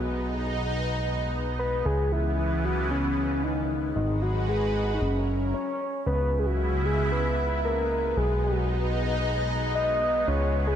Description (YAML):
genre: synthwave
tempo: 114 BPM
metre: 4/4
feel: straight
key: C# dorian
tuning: A4 = 440 Hz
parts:
  - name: soft octave-layered synth lead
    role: melody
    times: 0.0-10.8 s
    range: C#4 to D#5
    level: -28 LUFS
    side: left 1 dB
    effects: chorus, ping-pong delay
  - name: lush unison pad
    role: sustained chords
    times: 0.0-10.8 s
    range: C#3 to B4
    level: -30 LUFS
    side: right 1 dB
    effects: chorus, phaser
  - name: fat analog bass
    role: bass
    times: 0.0-10.8 s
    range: F#1 to C#2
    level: -28 LUFS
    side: equal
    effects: none
room: moderate lush hall reverb, RT60 2.1 s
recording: bright 1980s-style digital production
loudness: -24 LUFS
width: side -9 dB against mid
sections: 0.0-6.1 A section; 6.1-10.8 B section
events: break 5.5-6.1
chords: 0.0 B6; 1.9 C#m7; 4.0 G#m7; 5.0 F#7; 6.1 C#m7; 8.2 B6